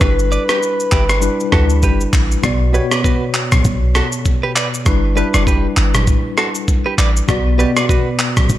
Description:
afrobeats; 99 BPM; 4/4; swing 58% on 16ths; B minor; A4 = 440 Hz
breathy flute-like synth lead; melody; 0.0-2.1 s; B4; -21 LUFS; left 1 dB; chorus, digital delay
mellow tine electric piano; accompaniment; 0.0-8.6 s; B2 to D5; -20 LUFS; left 2 dB; medium stereo tremolo
direct-recorded clean electric guitar; riff; 0.0-8.1 s; E4 to D5; -24 LUFS; right 5 dB; spring reverb, digital delay
clean 808-style bass; bass; 0.0-8.6 s; F#1 to D2; -15 LUFS; equal
breakbeat sampler-style drum kit; drums; 0.0-8.6 s; handclaps, kick drum, rim click, shaker, toms; -17 LUFS; equal
digital ambience; -13 LUFS; side -14 dB against mid
0.0-2.4 A section; 2.4-8.6 B section
0.0 G6; 2.4 Bm; 4.9 G6; 7.3 Bm
| 0.01 0.62 1.23 1.83 | 2.44 3.04 3.65 4.25 | 4.86 5.47 6.07 6.68 | 7.29 7.89 8.50

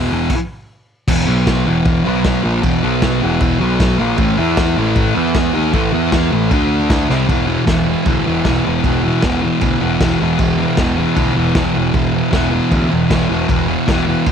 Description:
garage rock duo or trio; 155 BPM; 4/4; straight; A4 = 440 Hz
thick fuzz guitar; riff; 0.0-14.3 s; E2 to E4; -15 LUFS; equal; distortion
growling picked electric bass; bass; 0.0-14.3 s; E1 to E2; -22 LUFS; equal; overdrive
vintage drum kit; drums; 0.3-14.3 s; crash cymbal, kick drum, snare drum; -19 LUFS; equal
small room ambience; -13 LUFS; side -7 dB against mid
0.0-1.1 A section; 1.1-7.3 B section; 7.3-14.3 C section
stop 0.3-1.1; drum fill 7.1
0.0 E5; 1.3 B5; 1.7 E5; 2.1 B5; 2.4 E5; 2.8 B5; 3.2 E5; 3.6 B5; 4.0 A#5; 4.2 A5; 4.4 E5; 4.8 A5; 5.2 E5; 5.5 A5; 5.9 E5; 6.3 A5; 6.5 D5; 7.1 C5; 7.3 E5
0.31 0.70 | 1.08 1.47 1.86 2.25 | 2.64 3.03 3.41 3.80 | 4.19 4.58 4.96 5.35 | 5.74 6.13 6.52 6.91 | 7.29 7.68 8.07 8.46 | 8.85 9.24 9.63 10.02 | 10.40 10.79 11.18 11.57 | 11.96 12.34 12.73 13.12 | 13.51 13.89 14.28

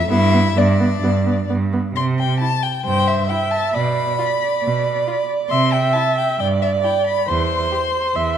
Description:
quick classical-period movement for string quartet; 135 BPM; 4/4; rubato; C major; A4 = 439 Hz
rich violin; melody; 0.0-8.4 s; D5 to C6; -22 LUFS; left 6 dB
clear cello; bass; 0.0-8.4 s; E2 to C3; -20 LUFS; right 3 dB
rich violin; second line; 0.1-7.8 s; D4 to G4; -28 LUFS; left 3 dB
warm viola; accompaniment; 0.1-8.4 s; B3 to E5; -20 LUFS; right 3 dB
moderate recital hall reverb, RT60 1.7 s; dark, warm production; -16 LUFS; side -9 dB against mid
0.0-2.0 A section; 2.0-8.4 B section
0.1 G; 2.0 C; 3.7 Bm; 5.5 C; 7.3 C/E
| 0.10 0.57 1.03 1.50 | 1.96 2.41 2.85 3.30 | 3.74 4.19 4.63 5.07 | 5.51 5.95 6.39 6.84 | 7.28 7.72 8.15

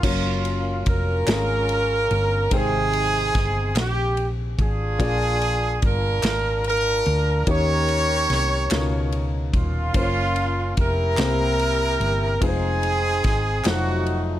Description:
slow gospel; 48 BPM (dotted quarters); 6/8; straight; A4 = 441 Hz
clear horn section; melody; 0.0-14.4 s; A3 to Db5; -23 LUFS; right 1 dB
warm baby grand piano; accompaniment; 0.0-14.4 s; Bb2 to G5; -28 LUFS; left 3 dB
hollow-body short-scale fingered electric bass; bass; 0.0-14.4 s; Eb1 to Eb2; -24 LUFS; equal
natural country drum kit; drums; 0.0-14.3 s; crash cymbal, kick drum, ride cymbal, snare drum; -26 LUFS; equal
group handclap; percussion; 1.3-14.0 s; -32 LUFS; right 4 dB
little or no reverb; -19 LUFS; side -13 dB against mid
0.0-14.4 A section
0.0 Gbmaj7; 1.3 Db/Ab; 2.5 Abmaj7; 5.0 Bb7; 7.5 Eb7; 8.7 Db13; 9.9 Gbmaj7; 11.2 C7; 12.4 Fm7; 13.7 F7b9
| 0.04 1.28 | 2.52 3.76 | 5.00 6.24 | 7.47 8.71 | 9.95 11.19 | 12.42 13.65

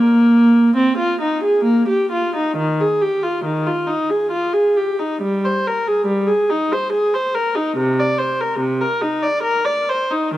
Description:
classical, baroque-style suite movement for unaccompanied viola; 70 BPM; 3/4; uneven beats, rubato; Eb major; A4 = 440 Hz
warm viola; solo; 0.0-10.4 s; C3 to D5; -15 LUFS; equal
moderate concert hall reverb, RT60 2.2 s; close, detailed microphones; -15 LUFS; side -14 dB against mid
0.0-2.6 A section; 2.6-10.4 A section
0.75 1.66 | 2.58 3.45 4.30 | 5.20 6.07 6.92 | 7.76 8.60 9.45 | 10.34

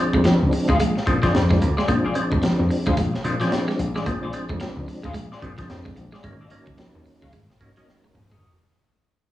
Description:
funk; 110 BPM; 4/4; swing 60% on 16ths; Bb mixolydian; A4 = 440 Hz
percussive tonewheel organ; stabs; 0.0-8.6 s; F3 to Db5; -24 LUFS; equal; chorus vibrato, fast rotary speaker, cassette tape
clean electric guitar; accompaniment; 0.1-8.5 s; C4 to F5; -31 LUFS; left 5 dB; wah, spring reverb, cassette tape
electric guitar at the edge of break-up; riff; 0.1-8.4 s; F3 to Bb3; -25 LUFS; right 2 dB; cassette tape
vintage slap bass; bass; 0.1-8.4 s; G1 to Bb2; -24 LUFS; left 1 dB
crunchy breakbeat drum kit; drums; 0.1-8.4 s; hi-hat, kick drum, snare drum, toms; -26 LUFS; equal; cassette tape
light reverb; home recording on cassette, small room reverb; -19 LUFS; side -14 dB against mid
0.0-8.4 A section
fade-out 0.0-8.4; drum fill 7.9-8.4
0.0 Bb9; 6.2 Ab9sus4
0.25 0.79 1.34 | 1.88 2.43 2.97 3.52 | 4.06 4.61 5.15 5.70 | 6.24 6.79 7.33 7.88

